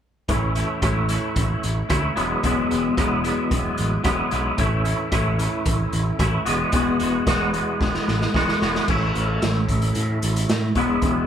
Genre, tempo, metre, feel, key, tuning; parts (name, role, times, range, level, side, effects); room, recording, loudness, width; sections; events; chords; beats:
psychedelic rock; 112 BPM; 4/4; straight; A4 = 437 Hz
twangy electric guitar; riff; 0.3-11.3 s; E2 to F#4; -22 LUFS; left 1 dB; rotary speaker
growling picked electric bass; bass; 0.3-11.2 s; E1 to A2; -25 LUFS; right 1 dB; overdrive
raw garage drum kit; drums; 0.3-11.1 s; crash cymbal, hi-hat, kick drum, rim click, snare drum; -25 LUFS; equal
light reverb; band playing live in one room; -19 LUFS; side -9 dB against mid
0.3-8.9 A section; 8.9-11.3 B section
drum fill 7.8-8.9
0.3 A; 2.2 Eadd9; 4.6 A; 6.5 Eadd9; 8.9 A; 10.8 Eadd9
| 0.29 0.83 1.37 1.91 | 2.44 2.98 3.52 4.05 | 4.59 5.13 5.66 6.20 | 6.74 7.27 7.81 8.34 | 8.88 9.42 9.95 10.49 | 11.03